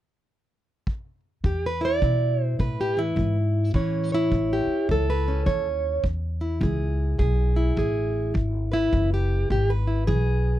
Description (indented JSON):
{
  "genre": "acoustic country blues, solo or duo",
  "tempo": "104 BPM",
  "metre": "4/4",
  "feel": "swing 61% on 8ths",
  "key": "E major",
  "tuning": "A4 = 438 Hz",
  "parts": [
    { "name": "kick drum", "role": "drums", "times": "0.9-10.2 s", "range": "none", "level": "-28 LUFS", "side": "equal", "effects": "none" },
    { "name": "fingerpicked plugged-in steel-string acoustic guitar", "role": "melody", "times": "1.4-10.6 s", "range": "E2 to D5", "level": "-25 LUFS", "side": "right 1 dB", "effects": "none" },
    { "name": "upright bass", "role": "bass", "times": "1.4-10.6 s", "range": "F#1 to B2", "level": "-24 LUFS", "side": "equal", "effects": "none" }
  ],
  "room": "little or no reverb",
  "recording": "dry, close 1970s-style studio recording",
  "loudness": "-22 LUFS",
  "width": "side -13 dB against mid",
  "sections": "0.0-1.4 A section; 1.4-10.6 B section",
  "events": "none",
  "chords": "0.0 N.C.; 1.4 E; 3.7 A; 6.0 E",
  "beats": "0.30 0.87 | 1.45 2.02 2.60 3.17 | 3.74 4.32 4.89 5.47 | 6.04 6.62 7.19 7.77 | 8.35 8.92 9.50 10.07"
}